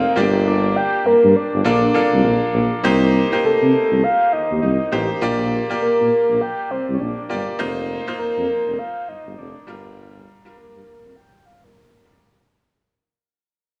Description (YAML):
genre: R&B, new jack swing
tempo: 101 BPM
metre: 4/4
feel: swing 62% on 16ths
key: C dorian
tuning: A4 = 441 Hz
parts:
  - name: soft octave-layered synth lead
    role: melody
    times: 0.0-12.0 s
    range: A4 to G5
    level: -21 LUFS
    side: equal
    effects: chorus, digital delay
  - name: bright grand piano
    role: accompaniment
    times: 0.0-12.4 s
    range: G3 to D5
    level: -24 LUFS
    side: equal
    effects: none
  - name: warm tuba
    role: bass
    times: 0.2-12.2 s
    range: F1 to C3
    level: -22 LUFS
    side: equal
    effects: none
room: light reverb, small room ambience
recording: none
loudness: -18 LUFS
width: mono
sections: 0.0-2.8 A section; 2.8-12.3 B section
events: fade-out 2.8-12.3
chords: 0.2 Gm7; 1.6 Bbmaj7; 2.8 Cm7; 5.2 Bb6; 7.6 F7sus4; 9.7 Gm7